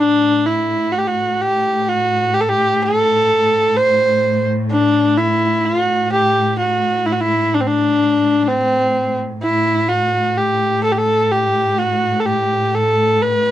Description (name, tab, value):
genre	Turkish makam ensemble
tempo	127 BPM (eighths)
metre	10/8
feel	straight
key	A makam huseyni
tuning	A4 = 440 Hz
part	warm kamancheh	melody	0.0-13.5 s	C4 to C5	-15 LUFS	equal	none
part	rich studio cello section	drone	0.0-13.5 s	A2	-22 LUFS	left 1 dB	none
room	light reverb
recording	dark, warm production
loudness	-14 LUFS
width	side -12 dB against mid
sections	0.0-13.5 A section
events	none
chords	none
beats	0.45 0.92 1.40 1.87 2.34 2.82 3.29 3.76 4.24 | 4.71 5.18 5.66 6.13 6.60 7.07 7.55 8.02 8.49 8.96 | 9.44 9.91 10.38 10.85 11.32 11.80 12.27 12.74 13.21